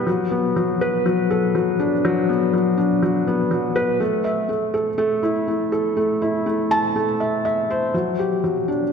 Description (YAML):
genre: electronica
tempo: 122 BPM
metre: 4/4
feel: straight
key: unclear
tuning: A4 = 435 Hz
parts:
  - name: felt-muted upright piano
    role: solo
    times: 0.0-8.9 s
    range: F#3 to A5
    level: -18 LUFS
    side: left 1 dB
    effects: none
room: wet concert hall reverb, RT60 2.1 s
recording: none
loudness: -18 LUFS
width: side -6 dB against mid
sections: 0.0-7.9 A section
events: none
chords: none